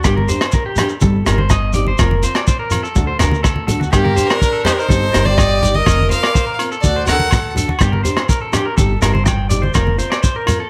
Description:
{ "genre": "highlife guitar band", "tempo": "124 BPM", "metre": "4/4", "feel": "straight", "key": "G minor", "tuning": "A4 = 440 Hz", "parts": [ { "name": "nylon-string guitar", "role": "accompaniment", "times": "0.0-10.6 s", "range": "F3 to G4", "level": "-27 LUFS", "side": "equal", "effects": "none" }, { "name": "electric guitar at the edge of break-up", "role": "arpeggios", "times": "0.0-10.7 s", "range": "F#4 to G5", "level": "-24 LUFS", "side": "equal", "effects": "slapback echo" }, { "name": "upright bass", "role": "bass", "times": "0.0-10.0 s", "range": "F1 to D2", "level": "-21 LUFS", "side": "equal", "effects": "none" }, { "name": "crunchy breakbeat drum kit", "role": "drums", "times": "0.0-10.6 s", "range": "hi-hat, kick drum, rim click", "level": "-20 LUFS", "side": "equal", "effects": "none" }, { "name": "shekere", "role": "percussion", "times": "0.0-10.6 s", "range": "none", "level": "-25 LUFS", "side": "equal", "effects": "none" }, { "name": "agogo bells", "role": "percussion", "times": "0.1-10.6 s", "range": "none", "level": "-28 LUFS", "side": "equal", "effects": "none" }, { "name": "congas", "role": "percussion", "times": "0.2-10.6 s", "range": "none", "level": "-25 LUFS", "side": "equal", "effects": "none" }, { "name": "clear fiddle", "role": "melody", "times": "3.9-7.5 s", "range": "G4 to F#5", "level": "-21 LUFS", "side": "equal", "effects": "slapback echo" }, { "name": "breathy alto saxophone", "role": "second line", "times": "4.0-7.6 s", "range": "Bb3 to Bb4", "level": "-28 LUFS", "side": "equal", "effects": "none" } ], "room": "light reverb, studio ambience", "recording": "none", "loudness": "-15 LUFS", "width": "mono", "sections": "0.0-10.7 A section", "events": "none", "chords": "0.1 Gm; 1.0 Cm/G; 2.0 Fsus4; 3.0 D; 3.9 Gm; 4.9 Cm/G; 5.9 Fsus4; 6.8 D; 7.8 Gm; 8.8 Cm/G; 9.7 Fsus4" }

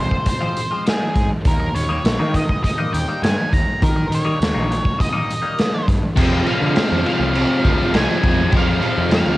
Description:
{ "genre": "quiet-loud alternative rock", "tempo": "101 BPM", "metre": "4/4", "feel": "straight", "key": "F minor from 6.2 s", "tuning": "A4 = 440 Hz", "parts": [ { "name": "octave-fuzz lead guitar", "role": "melody", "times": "0.0-9.4 s", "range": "Ab4 to Bb5", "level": "-24 LUFS", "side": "right 1 dB", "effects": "distortion, cassette tape" }, { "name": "fuzz fingered electric bass", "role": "bass", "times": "0.0-9.4 s", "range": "Bb1 to Eb3", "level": "-22 LUFS", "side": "equal", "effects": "overdrive" }, { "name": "raw garage drum kit", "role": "drums", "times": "0.1-9.3 s", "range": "crash cymbal, hi-hat, kick drum, snare drum", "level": "-19 LUFS", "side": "equal", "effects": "cassette tape" }, { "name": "twangy electric guitar", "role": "arpeggios", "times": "0.3-5.8 s", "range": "Eb3 to F4", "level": "-27 LUFS", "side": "left 3 dB", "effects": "phaser, cassette tape, tape echo" }, { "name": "distorted electric guitar", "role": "riff", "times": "6.2-9.4 s", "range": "F2 to C4", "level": "-22 LUFS", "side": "left 5 dB", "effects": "distortion, cassette tape" }, { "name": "heavy high-gain guitar", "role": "riff", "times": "6.2-9.4 s", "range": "F2 to F3", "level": "-27 LUFS", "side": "equal", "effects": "distortion, cassette tape" }, { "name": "overdriven electric guitar", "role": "riff", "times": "6.2-9.4 s", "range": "F2 to F3", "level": "-24 LUFS", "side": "right 6 dB", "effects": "tremolo, cassette tape" } ], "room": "light reverb", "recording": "home recording on cassette", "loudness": "-16 LUFS", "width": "side -17 dB against mid", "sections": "0.0-6.2 A section; 6.2-9.4 B section", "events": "lead electric guitar solo 6.2-9.4", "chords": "0.0 Fm; 1.4 Eb; 6.2 Fm" }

